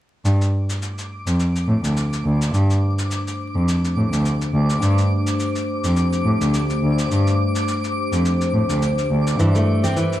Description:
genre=folktronica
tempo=105 BPM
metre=4/4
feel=swing 56% on 16ths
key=unclear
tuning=A4 = 440 Hz
part: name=twinkling granular texture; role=texture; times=0.9-10.2 s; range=D6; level=-30 LUFS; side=right 1 dB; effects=built-in reverb
part: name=warbly tape-like pad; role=sustained chords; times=2.2-10.2 s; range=A3 to C5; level=-26 LUFS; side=left 3 dB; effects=chorus, built-in reverb
part: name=muted cello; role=bass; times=0.3-9.5 s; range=D2 to A2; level=-19 LUFS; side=equal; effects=tube saturation
part: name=cabasa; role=drums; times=0.3-10.2 s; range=none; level=-32 LUFS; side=left 1 dB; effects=none
part: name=fingerpicked steel-string acoustic guitar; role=arpeggios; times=9.4-10.2 s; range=E3 to C4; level=-20 LUFS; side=equal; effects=digital delay
room=light reverb, studio ambience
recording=dark, warm production, vinyl crackle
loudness=-18 LUFS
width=side -13 dB against mid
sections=0.3-10.2 A section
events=filter sweep on ambient pad 0.3-10.2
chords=0.3 Gsus2; 9.4 Am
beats=| 0.25 0.82 1.40 1.97 | 2.54 3.11 3.68 4.25 | 4.82 5.39 5.97 6.54 | 7.11 7.68 8.25 8.82 | 9.39 9.97

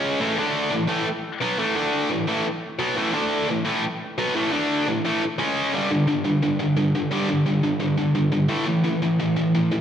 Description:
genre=punk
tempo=174 BPM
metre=4/4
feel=straight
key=A major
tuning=A4 = 441 Hz
part: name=tight distorted guitar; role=solo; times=0.0-9.8 s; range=G2 to D4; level=-20 LUFS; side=equal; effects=distortion, slapback echo
room=wet concert hall reverb, RT60 1.9 s, digital ambience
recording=big arena sound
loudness=-20 LUFS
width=side -9 dB against mid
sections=0.0-5.7 A section; 5.7-9.8 B section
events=none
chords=0.2 A5; 0.4 D5; 0.7 A5; 1.8 D5; 2.1 A5; 3.1 D5; 3.5 A5; 4.5 D5; 4.9 A5; 5.4 C#5; 5.7 G5; 8.5 A5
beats=| 0.20 0.55 0.90 1.24 | 1.59 1.94 2.28 2.63 | 2.97 3.32 3.66 4.01 | 4.35 4.70 5.04 5.39 | 5.73 6.08 6.42 6.77 | 7.11 7.46 7.81 8.15 | 8.50 8.84 9.19 9.54

